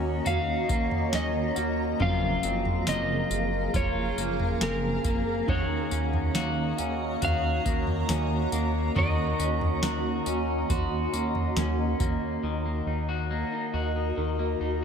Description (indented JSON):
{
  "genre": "dream pop",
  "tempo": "69 BPM",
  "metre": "4/4",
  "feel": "straight",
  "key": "Eb dorian",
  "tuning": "A4 = 436 Hz",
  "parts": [
    { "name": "electric slide guitar", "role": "melody", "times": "0.0-11.5 s", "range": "Bb4 to F5", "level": "-32 LUFS", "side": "left 2 dB", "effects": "ping-pong delay" },
    { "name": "mellow electric guitar", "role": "accompaniment", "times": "0.0-12.5 s", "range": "Gb2 to Gb4", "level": "-32 LUFS", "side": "right 4 dB", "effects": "harmonic tremolo, analog chorus" },
    { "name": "granular cloud pad", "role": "sustained chords", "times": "0.0-14.8 s", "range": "Gb4 to Bb5", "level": "-33 LUFS", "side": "equal", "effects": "built-in reverb" },
    { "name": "electric guitar at the edge of break-up", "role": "arpeggios", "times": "0.0-14.8 s", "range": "Gb2 to Gb4", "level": "-32 LUFS", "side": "left 4 dB", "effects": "lush chorus, ping-pong delay" },
    { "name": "chorused synth bass", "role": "bass", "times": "0.0-14.8 s", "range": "Gb1 to Eb2", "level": "-32 LUFS", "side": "equal", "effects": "none" },
    { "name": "vibraphone with medium mallets", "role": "texture", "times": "0.0-12.8 s", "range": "Gb4 to Db6", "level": "-39 LUFS", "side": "right 4 dB", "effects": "ping-pong delay" },
    { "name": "booming analog drum machine", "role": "drums", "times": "0.3-12.2 s", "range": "kick drum, snare drum, tambourine, toms", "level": "-30 LUFS", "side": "equal", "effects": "none" }
  ],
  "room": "light reverb",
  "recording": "none",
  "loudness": "-25 LUFS",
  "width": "side -7 dB against mid",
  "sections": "0.0-12.4 A section; 12.4-14.8 B section",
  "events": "none",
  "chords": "0.0 Ebm7; 2.0 Gbmaj9#11; 5.5 Ebm7; 12.4 Ebm"
}